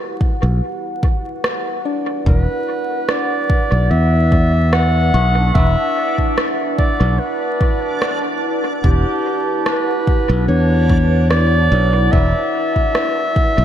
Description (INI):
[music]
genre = ambient dub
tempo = 73 BPM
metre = 4/4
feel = swing 54% on 16ths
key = E dorian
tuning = A4 = 435 Hz
[part]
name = deep dark ambient pad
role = sustained chords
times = 0.0-13.6 s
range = E4 to A5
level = -24 LUFS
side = left 1 dB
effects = chorus, built-in reverb
[part]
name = electronic kick drum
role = drums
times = 0.2-13.5 s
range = none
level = -16 LUFS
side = equal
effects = none
[part]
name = modern bright fingered electric bass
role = bass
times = 0.4-13.6 s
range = E1 to E2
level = -14 LUFS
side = equal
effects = none
[part]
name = electronic rim click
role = drums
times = 1.4-13.1 s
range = none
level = -25 LUFS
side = right 1 dB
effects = dub echo
[part]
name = soft synth bell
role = arpeggios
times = 1.9-13.6 s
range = D4 to C#6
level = -28 LUFS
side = left 2 dB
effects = chorus, phaser, analog delay
[part]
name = warm clarinet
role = melody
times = 2.3-13.6 s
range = G4 to F#5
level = -20 LUFS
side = equal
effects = dub echo
[part]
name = backwards swelling texture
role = texture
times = 5.2-13.6 s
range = D4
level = -28 LUFS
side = right 3 dB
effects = built-in reverb
[sound]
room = light reverb, digital ambience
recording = vinyl crackle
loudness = -14 LUFS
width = side -10 dB against mid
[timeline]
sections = 0.0-13.6 A section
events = none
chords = 0.0 Em7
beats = 0.62 1.44 | 2.27 3.09 3.91 4.73 | 5.55 6.38 7.20 8.02 | 8.84 9.66 10.48 11.31 | 12.13 12.95